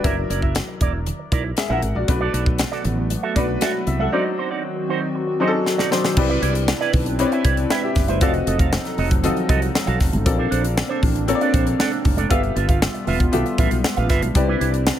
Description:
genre	polished 1980s jazz-funk pop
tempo	118 BPM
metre	4/4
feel	straight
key	unclear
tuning	A4 = 441 Hz
part	clear grand piano	accompaniment	0.0-15.0 s	F#3 to G5	-24 LUFS	left 4 dB	wide subtle chorus
part	electric guitar with an envelope filter	riff	0.0-14.9 s	D4 to F5	-26 LUFS	right 8 dB	analog chorus
part	woody fretless electric bass	bass	0.0-14.9 s	E1 to C2	-23 LUFS	equal	none
part	crisp fusion drum kit	drums	0.0-15.0 s	crash cymbal, hi-hat, kick drum, snare drum	-21 LUFS	equal	none
part	congas	percussion	0.0-15.0 s	none	-33 LUFS	right 3 dB	none
part	hollow soft pad	sustained chords	2.5-15.0 s	Eb3 to B4	-27 LUFS	equal	chorus
room	studio reverb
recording	none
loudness	-18 LUFS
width	side -11 dB against mid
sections	0.0-6.2 A section; 6.2-15.0 B section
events	drum fill 5.7-6.2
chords	0.0 F#7b13; 2.1 Bm7; 4.1 D7b9; 6.2 Cmaj9; 8.2 F7b9; 10.3 Bbmaj9; 12.3 G13; 14.4 Cmaj9

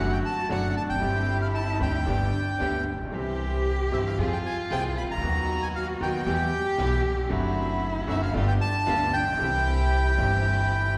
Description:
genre	tango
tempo	115 BPM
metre	4/4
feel	rubato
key	C major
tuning	A4 = 440 Hz
part	bandoneon	melody	0.0-10.9 s	E5 to B5	-31 LUFS	equal	none
part	rich cello	second line	0.0-11.0 s	D4 to G4	-34 LUFS	equal	none
part	bright concert grand piano	accompaniment	0.0-11.0 s	G1 to Ab4	-34 LUFS	equal	none
part	warm chamber string section	stabs	0.0-10.9 s	A3 to Ab4	-39 LUFS	equal	none
part	upright bass	bass	0.0-10.9 s	E1 to F2	-30 LUFS	equal	none
room	wet concert hall reverb, RT60 2.3 s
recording	recorded in a church or concert hall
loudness	-26 LUFS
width	mono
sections	0.0-11.0 A section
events	none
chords	0.0 D/F#; 1.0 Gsus4; 2.1 G; 3.1 C; 4.2 Fm; 5.2 B/D#; 6.3 Em; 7.3 D7/F#; 8.3 G7; 9.4 C

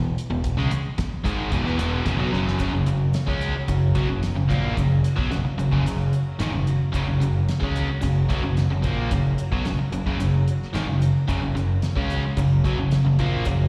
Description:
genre	classic rock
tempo	111 BPM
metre	4/4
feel	straight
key	F# mixolydian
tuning	A4 = 440 Hz
part	biting overdriven guitar	riff	0.0-13.7 s	E2 to C#4	-29 LUFS	equal	slapback echo
part	biting overdriven guitar	riff	0.0-13.7 s	E2 to C#4	-29 LUFS	equal	slapback echo
part	growling fingered electric bass	bass	0.0-13.7 s	E1 to E2	-27 LUFS	equal	overdrive
part	cloth-damped thuddy drum kit	drums	0.2-13.6 s	hi-hat, kick drum, snare drum	-31 LUFS	equal	none
part	picked swing-style acoustic guitar	accompaniment	2.6-13.7 s	F#2 to F#4	-39 LUFS	equal	slapback echo
room	small room ambience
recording	live gig heard through the venue's PA, recital hall reverb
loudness	-23 LUFS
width	mono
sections	0.0-2.6 A section; 2.6-13.7 B section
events	drum fill 2.3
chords	0.0 E5; 2.6 F#

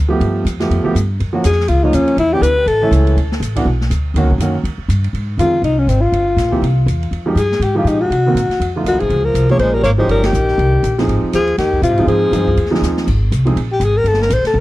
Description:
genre	jazz, small-group swing and bop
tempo	242 BPM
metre	4/4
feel	swing 58% on 8ths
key	Ab major from 5.1 s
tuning	A4 = 435 Hz
part	upright bass	bass	0.0-14.6 s	G1 to C3	-16 LUFS	equal	none
part	warm baby grand piano	accompaniment	0.1-13.6 s	Eb3 to Ab4	-18 LUFS	right 2 dB	none
part	open jazz drum kit	drums	0.2-14.5 s	crash cymbal, hi-hat, kick drum, ride cymbal, snare drum	-28 LUFS	equal	none
part	breathy alto saxophone	melody	1.5-2.9, 5.4-14.6 s	C4 to Db5	-16 LUFS	left 2 dB	tape echo
part	warm tenor saxophone	second line	8.9-12.8 s	C3 to Bb3	-22 LUFS	right 3 dB	none
room	little or no reverb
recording	dry, close 1970s-style studio recording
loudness	-13 LUFS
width	side -17 dB against mid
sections	0.0-5.1 A section; 5.1-13.1 B section; 13.1-14.6 C section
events	band accent 10.2; drum fill 12.8; alto saxophone solo 13.1-14.6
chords	0.2 G9; 1.2 Gbmaj7; 2.2 Em7; 2.7 A; 3.2 D5; 4.2 Ebm7; 4.6 Eb; 5.1 Ab6; 6.1 Gm7; 6.6 C; 7.1 Fm9; 8.1 Cm7b5; 8.6 F7; 9.1 Bbm7; 10.1 Eb9; 11.1 Ab6; 13.1 Ab; 14.1 Gmadd9

